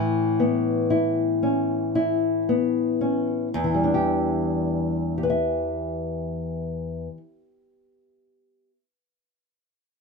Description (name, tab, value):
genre	acoustic folk duo or small band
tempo	55-60 BPM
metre	4/4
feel	straight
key	E dorian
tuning	A4 = 439 Hz
part	open-back banjo	melody	0.0-2.4 s	E5	-44 LUFS	left 4 dB	none
part	nylon-string guitar	accompaniment	0.0-8.8 s	E2 to E5	-22 LUFS	left 2 dB	none
room	light reverb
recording	close, detailed microphones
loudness	-22 LUFS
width	side -4 dB against mid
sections	0.0-3.5 A section; 3.5-7.9 B section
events	slowing down 0.0-3.5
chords	0.0 Aadd9; 3.5 Em7